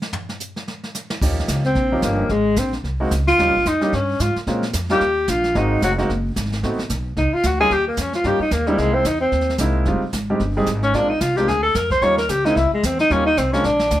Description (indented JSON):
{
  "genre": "jazz, small-group swing and bop",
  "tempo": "222 BPM",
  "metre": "4/4",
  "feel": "swing 58% on 8ths",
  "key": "Eb mixolydian",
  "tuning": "A4 = 441 Hz",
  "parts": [
    { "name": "jazz brush drum kit", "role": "drums", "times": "0.0-14.0 s", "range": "brushed snare drum, crash cymbal, hi-hat, kick drum, snare drum, toms", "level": "-28 LUFS", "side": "right 1 dB", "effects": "none" },
    { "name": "clear baby grand piano", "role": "accompaniment", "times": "1.2-13.6 s", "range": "F3 to Ab4", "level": "-23 LUFS", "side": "right 1 dB", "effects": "none" },
    { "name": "upright bass", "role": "bass", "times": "1.2-14.0 s", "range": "F1 to Bb2", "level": "-23 LUFS", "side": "equal", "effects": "none" },
    { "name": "breathy tenor saxophone", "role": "melody", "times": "1.7-14.0 s", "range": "G3 to Db5", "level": "-18 LUFS", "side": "left 1 dB", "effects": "none" }
  ],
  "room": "light reverb",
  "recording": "none",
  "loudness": "-17 LUFS",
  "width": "side -13 dB against mid",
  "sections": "0.0-1.2 A section; 1.2-14.0 B section",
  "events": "drum solo 0.0-1.2; drum fill 13.6-14.0",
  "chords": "0.0 N.C.; 1.2 Eb7; 2.3 Ab; 3.4 Eb7; 4.5 Bbm7; 5.0 Eb; 5.5 Ab7; 6.6 Adim7; 7.7 Eb7; 8.8 C7alt; 9.9 Fm7; 10.9 Bb7; 12.0 Eb7; 12.6 Caug; 13.1 Eb7"
}